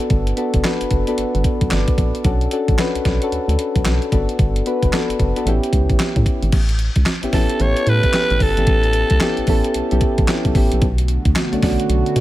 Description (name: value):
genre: R&B, new jack swing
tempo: 112 BPM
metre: 4/4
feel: swing 62% on 16ths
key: unclear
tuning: A4 = 440 Hz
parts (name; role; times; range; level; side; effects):
- soft electric-piano-like synth keys; accompaniment; 0.0-12.2 s; A3 to D5; -21 LUFS; left 1 dB; chorus
- crisp 8-bit digital drum machine; drums; 0.0-12.2 s; crash cymbal, handclaps, hi-hat, kick drum, snare drum; -19 LUFS; equal; none
- solid FM bass; bass; 0.1-12.2 s; F#1 to B2; -19 LUFS; equal; none
- raspy alto saxophone; melody; 7.3-10.0 s; A4 to C#5; -20 LUFS; equal; none
- chorused pulse-width pad; sustained chords; 10.8-12.2 s; D3 to F#4; -24 LUFS; equal; none
room: digital ambience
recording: none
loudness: -15 LUFS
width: side -15 dB against mid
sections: 0.0-6.5 A section; 6.5-12.2 B section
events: synth keys fill 1.4-2.2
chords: 0.0 Gmaj7; 2.2 Bm9; 4.1 Gmaj7; 5.5 A9; 6.5 A7; 10.8 Bm7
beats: | 0.10 0.64 1.18 1.71 | 2.25 2.78 3.32 3.85 | 4.39 4.92 5.46 6.00 | 6.53 7.07 7.60 8.14 | 8.68 9.21 9.75 10.28 | 10.82 11.35 11.89